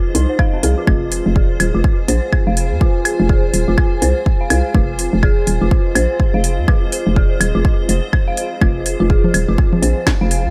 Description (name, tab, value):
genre	minimal techno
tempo	124 BPM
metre	4/4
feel	swing 60% on 16ths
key	F minor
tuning	A4 = 439 Hz
part	granular cloud pad	texture	0.0-10.5 s	F4 to Ab5	-26 LUFS	equal	built-in reverb, lush chorus, sidechain pumping
part	dark detuned synth bell	riff	0.1-10.2 s	C4 to F5	-26 LUFS	equal	chorus, phaser, sidechain pumping, low-pass filter, delay
part	hollow knocking FM bass	bass	0.1-10.5 s	Eb1 to F2	-19 LUFS	equal	sidechain pumping
part	house drum kit	drums	0.1-10.4 s	hi-hat, snare drum	-24 LUFS	equal	none
part	electronic kick drum	drums	0.4-10.2 s	none	-18 LUFS	equal	none
part	claves and congas	percussion	0.4-10.2 s	none	-25 LUFS	equal	delay
room	light reverb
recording	none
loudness	-16 LUFS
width	mono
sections	0.0-10.5 A section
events	filter sweep on synth bell 0.0-10.5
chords	0.0 Fm